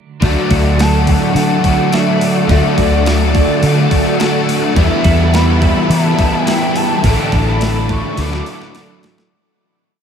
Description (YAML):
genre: rock, shoegaze and dream pop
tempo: 106 BPM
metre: 4/4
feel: straight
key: D major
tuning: A4 = 440 Hz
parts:
  - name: pure sine lead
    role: melody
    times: 0.2-9.0 s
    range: D5 to D6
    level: -21 LUFS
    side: left 1 dB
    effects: chorus, diffuse ambient delay
  - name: string machine, cellos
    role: sustained chords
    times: 0.2-9.3 s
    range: A4 to D6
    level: -22 LUFS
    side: equal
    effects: ensemble chorus
  - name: clean electric guitar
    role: arpeggios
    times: 0.2-9.3 s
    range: E3 to F#4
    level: -24 LUFS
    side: right 6 dB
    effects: ensemble chorus, diffuse ambient delay
  - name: crunchy overdriven guitar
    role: riff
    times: 0.2-9.3 s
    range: A2 to E4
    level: -20 LUFS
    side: right 7 dB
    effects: reverse reverb
  - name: crunchy overdriven guitar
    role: riff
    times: 0.2-9.3 s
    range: A2 to E4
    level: -21 LUFS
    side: left 1 dB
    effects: ensemble chorus
  - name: overdriven semi-hollow guitar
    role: riff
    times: 0.2-9.3 s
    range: A2 to F#4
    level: -18 LUFS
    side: left 7 dB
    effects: ensemble chorus
  - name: vintage muted fingered electric bass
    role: bass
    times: 0.2-8.4 s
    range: A1 to E3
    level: -15 LUFS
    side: equal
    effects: none
  - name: crisp 8-bit digital drum machine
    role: drums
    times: 0.2-9.3 s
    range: hi-hat, kick drum, snare drum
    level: -19 LUFS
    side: equal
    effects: overdrive
room: wet huge ambient reverb, RT60 7.4 s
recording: dreamy mix soaked in reverb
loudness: -11 LUFS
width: side -7 dB against mid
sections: 0.2-9.3 chorus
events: fade-out 7.0-9.3; drum fill 8.2-9.3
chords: 0.2 D; 4.8 Emadd9; 7.0 Asus4; 8.2 Dadd9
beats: | 0.22 0.79 1.36 1.93 | 2.50 3.06 3.63 4.20 | 4.76 5.33 5.90 6.47 | 7.04 7.61 8.18 8.75